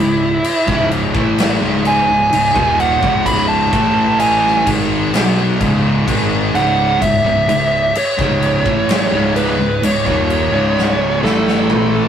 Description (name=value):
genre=stoner and doom metal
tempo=64 BPM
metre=4/4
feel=straight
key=C# minor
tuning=A4 = 441 Hz
part: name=fuzz lead guitar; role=melody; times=0.0-12.1 s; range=E4 to B5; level=-16 LUFS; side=right 2 dB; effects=distortion
part: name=distorted electric guitar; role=riff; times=0.0-12.1 s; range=C#2 to B3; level=-20 LUFS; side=equal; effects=distortion
part: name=thick fuzz guitar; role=riff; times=0.0-12.1 s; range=C#2 to B3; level=-23 LUFS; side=left 6 dB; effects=distortion
part: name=thick fuzz guitar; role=riff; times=0.0-12.1 s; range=C#2 to B3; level=-21 LUFS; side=right 4 dB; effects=distortion
part: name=fuzz fingered electric bass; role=bass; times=0.0-12.1 s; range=C#1 to B1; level=-23 LUFS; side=left 1 dB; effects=overdrive, tube saturation
part: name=big rock drum kit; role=drums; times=0.4-11.9 s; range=crash cymbal, kick drum, snare drum, toms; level=-19 LUFS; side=left 1 dB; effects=none
room=moderate stone room reverb, RT60 1.2 s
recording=rough rehearsal-room recording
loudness=-12 LUFS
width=side -9 dB against mid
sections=0.0-12.1 A section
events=lead electric guitar solo 0.0-12.1; drum fill 10.8-12.1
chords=0.0 C#m; 3.7 A5; 4.7 C#m; 11.2 A5